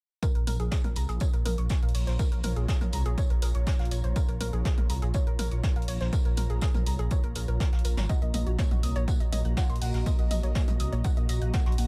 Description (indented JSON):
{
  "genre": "melodic techno",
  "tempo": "122 BPM",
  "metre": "4/4",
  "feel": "straight",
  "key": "Bb minor",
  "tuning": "A4 = 441 Hz",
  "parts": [
    { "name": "woody wave-folded pluck", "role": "arpeggios", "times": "0.2-11.8 s", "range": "Ab4 to Gb6", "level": "-41 LUFS", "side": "equal", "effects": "lush chorus, sidechain pumping, digital delay" },
    { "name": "electronic kick drum", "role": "drums", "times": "0.2-11.6 s", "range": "none", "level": "-30 LUFS", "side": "equal", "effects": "none" },
    { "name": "jazz brush drum kit", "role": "drums", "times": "0.2-11.9 s", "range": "hi-hat, snare drum, tambourine", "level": "-45 LUFS", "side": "equal", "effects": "high-pass filter on hats, high-pass filter on snare, high-pass filter on perc, high-pass filter on room" },
    { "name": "punchy analog drum machine", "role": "drums", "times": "0.2-11.9 s", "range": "hi-hat, toms", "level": "-41 LUFS", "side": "equal", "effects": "none" },
    { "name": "ethereal airy pad", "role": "texture", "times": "0.9-11.9 s", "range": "F4 to Bb5", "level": "-46 LUFS", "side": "equal", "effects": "ensemble chorus, built-in reverb, sidechain pumping" },
    { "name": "swelling detuned saw bass", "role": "bass", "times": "0.4-11.9 s", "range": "Ab1 to C2", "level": "-31 LUFS", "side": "equal", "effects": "sidechain pumping" },
    { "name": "unison lead", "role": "melody", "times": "8.1-11.9 s", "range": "Bb3 to Gb4", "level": "-41 LUFS", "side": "equal", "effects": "sidechain pumping, dub echo" }
  ],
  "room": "small room reverb",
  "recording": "none",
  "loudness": "-27 LUFS",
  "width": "mono",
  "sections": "0.2-11.9 A section",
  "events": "none",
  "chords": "0.2 Bbm; 8.1 Ebm/Bb",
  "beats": "| 0.23 0.72 1.21 1.70 | 2.19 2.69 3.18 3.67 | 4.16 4.65 5.14 5.64 | 6.13 6.62 7.11 7.60 | 8.10 8.59 9.08 9.57 | 10.06 10.55 11.05 11.54"
}